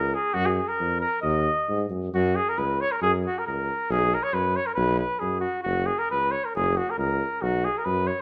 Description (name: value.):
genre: balkan folk.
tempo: 136 BPM.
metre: 2/4.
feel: swing 54% on 16ths.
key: F# major.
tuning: A4 = 436 Hz.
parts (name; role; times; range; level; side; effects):
clear flugelhorn; melody; 0.0-8.2 s; F#4 to Eb5; -27 LUFS; equal; none.
clear tuba; bass; 0.0-8.1 s; F#1 to Ab2; -29 LUFS; equal; none.
room: moderate large studio reverb, RT60 1.2 s.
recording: band playing live in one room.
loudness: -25 LUFS.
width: mono.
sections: 0.0-2.1 A section; 2.1-8.2 B section.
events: none.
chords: 0.4 Gbmaj9; 1.2 Ebm; 2.1 F#; 3.9 B5; 5.7 F#; 7.4 B5.